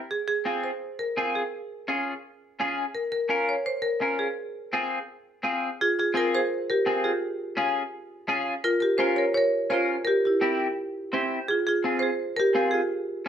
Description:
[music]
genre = latin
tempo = 169 BPM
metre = 4/4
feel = straight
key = F minor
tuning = A4 = 440 Hz
[part]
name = marimba with medium hard mallets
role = melody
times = 0.1-13.3 s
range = E4 to Db5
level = -25 LUFS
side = right 1 dB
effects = none
[part]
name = clean electric guitar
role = accompaniment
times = 0.5-13.3 s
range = C4 to C5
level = -27 LUFS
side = left 1 dB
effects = wide subtle chorus
[sound]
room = wet studio reverb, RT60 0.6 s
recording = rough home demo mix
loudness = -24 LUFS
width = side -9 dB against mid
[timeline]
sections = 0.0-5.8 A section; 5.8-13.3 B section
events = clean electric guitar fill 11.0-11.5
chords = 0.1 Fm; 1.5 Db; 2.9 Bbm; 4.4 Fm; 7.2 Db; 8.6 Bbm; 10.1 C; 11.5 Fm

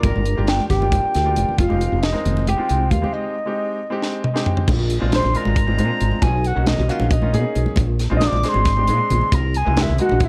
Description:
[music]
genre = electric jazz fusion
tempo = 271 BPM (eighths)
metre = 7/8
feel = straight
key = unclear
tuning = A4 = 440 Hz
[part]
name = mellow concert flute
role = melody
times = 0.0-10.3 s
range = Eb5 to Eb6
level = -26 LUFS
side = equal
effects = slapback echo
[part]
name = hollow-body jazz guitar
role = second line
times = 0.0-10.3 s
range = Eb4 to Eb5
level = -30 LUFS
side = equal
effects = none
[part]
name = clear baby grand piano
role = accompaniment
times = 0.0-10.2 s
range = Ab3 to G5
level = -29 LUFS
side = equal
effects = none
[part]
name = woody fretless electric bass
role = bass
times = 0.0-10.3 s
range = F1 to B2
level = -22 LUFS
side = equal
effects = ensemble chorus
[part]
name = tight funk drum kit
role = drums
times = 0.0-10.3 s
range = crash cymbal, hi-hat, kick drum, snare drum, toms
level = -24 LUFS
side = equal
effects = none
[part]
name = congas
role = percussion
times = 0.0-10.2 s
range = none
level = -30 LUFS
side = equal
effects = none
[sound]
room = small room reverb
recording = dark, warm production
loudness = -19 LUFS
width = mono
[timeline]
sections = 0.0-4.7 A section; 4.7-10.3 B section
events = break 3.1-4.7; drum fill 4.0-4.7; grand piano fill 4.0-4.7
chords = 0.0 Gm7; 1.6 Fm9; 4.7 Bb7; 6.2 Bmaj9; 7.8 Bb7; 9.3 C7alt

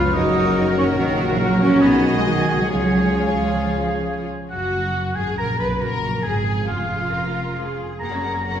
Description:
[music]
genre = classical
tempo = 137 BPM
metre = 4/4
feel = uneven beats, rubato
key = F# major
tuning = A4 = 440 Hz
[part]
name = warm symphonic violin section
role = melody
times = 0.0-8.6 s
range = E#4 to F#5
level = -31 LUFS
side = left 3 dB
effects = none
[part]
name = mellow clarinet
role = second line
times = 0.0-4.3 s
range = E#4 to G#4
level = -30 LUFS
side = left 3 dB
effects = none
[part]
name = silver concert flute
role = second line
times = 0.0-4.3 s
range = D#5 to E#6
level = -28 LUFS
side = right 1 dB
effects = none
[part]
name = warm oboe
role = second line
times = 0.0-8.6 s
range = G#4 to B5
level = -27 LUFS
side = equal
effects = none
[part]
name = warm symphonic violin section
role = second line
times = 0.0-8.6 s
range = E#4 to B4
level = -31 LUFS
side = left 3 dB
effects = none
[part]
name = rich symphonic viola section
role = accompaniment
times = 0.0-8.6 s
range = A#3 to B4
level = -31 LUFS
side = equal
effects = none
[part]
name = warm bassoon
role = accompaniment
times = 0.0-4.3 s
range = C#3 to D#3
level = -30 LUFS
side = equal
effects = none
[part]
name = warm French horn section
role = sustained chords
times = 0.0-4.3 s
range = E#4 to B4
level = -27 LUFS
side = left 3 dB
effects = none
[part]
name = concert harp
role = arpeggios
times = 0.0-8.6 s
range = E#2 to C#5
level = -28 LUFS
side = left 2 dB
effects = none
[part]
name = warm symphonic double bass section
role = bass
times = 0.0-8.6 s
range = E#1 to C#2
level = -26 LUFS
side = right 2 dB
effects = none
[part]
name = warm symphonic cello section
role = bass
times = 0.1-8.6 s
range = D#3 to A#4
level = -22 LUFS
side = right 2 dB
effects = none
[sound]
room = wet recital hall reverb, RT60 1.5 s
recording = heard from further back in the room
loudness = -18 LUFS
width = side -9 dB against mid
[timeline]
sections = 0.0-4.5 A section; 4.5-8.6 B section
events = none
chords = 0.2 F#; 1.0 F#/A#; 1.8 G#m7/B; 2.7 C#; 4.5 F#; 6.3 C#; 8.0 F#

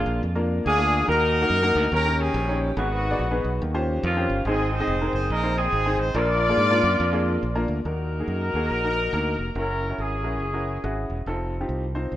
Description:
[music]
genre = uptempo gospel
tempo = 142 BPM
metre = 4/4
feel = swing 60% on 8ths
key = unclear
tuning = A4 = 440 Hz
[part]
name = warm horn section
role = melody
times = 0.0-11.1 s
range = Bb3 to D5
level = -24 LUFS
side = equal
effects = none
[part]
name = clear grand piano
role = accompaniment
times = 0.0-12.1 s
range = Ab2 to Eb5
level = -28 LUFS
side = left 1 dB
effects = none
[part]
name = modern bright fingered electric bass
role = bass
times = 0.0-12.2 s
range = Fb1 to Ab2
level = -26 LUFS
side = equal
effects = none
[sound]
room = light reverb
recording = rough home demo mix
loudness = -21 LUFS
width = side -13 dB against mid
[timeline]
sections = 0.0-7.9 A section; 7.9-12.2 B section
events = none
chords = 0.0 Bb; 1.1 Ebm; 1.9 Eb7; 2.8 Abm; 3.6 Eb13; 4.5 Ab; 6.2 Bb; 7.9 Ebm; 9.6 Gb7; 11.3 F7

